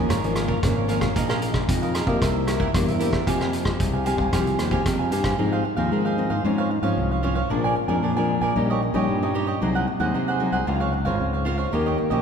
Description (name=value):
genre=samba and choro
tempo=114 BPM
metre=4/4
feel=straight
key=F minor, Ab major from 5.4 s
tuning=A4 = 440 Hz
part: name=cavaquinho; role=accompaniment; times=0.0-12.2 s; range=D4 to Ab5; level=-27 LUFS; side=right 3 dB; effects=none
part: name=nylon-string guitar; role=accompaniment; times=0.0-12.2 s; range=F2 to G4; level=-25 LUFS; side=left 2 dB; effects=none
part: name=growling fingered electric bass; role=bass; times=0.0-12.2 s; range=Ab1 to Ab3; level=-25 LUFS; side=equal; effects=overdrive
part: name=vintage drum kit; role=drums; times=0.1-5.4 s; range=hi-hat, kick drum, rim click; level=-26 LUFS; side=equal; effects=none
room=wet church reverb, RT60 3.2 s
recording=recorded in a church or concert hall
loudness=-20 LUFS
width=side -7 dB against mid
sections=0.0-5.4 A section; 5.4-12.2 B section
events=none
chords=0.1 Db6/Ab; 1.2 Bb7sus4; 2.2 C7; 3.3 Fmadd9; 5.4 Ab6; 6.4 Dbmaj7/Ab; 7.5 Bb7; 8.6 Eb7/Bb; 9.6 Ab7/C; 10.7 Dbmaj7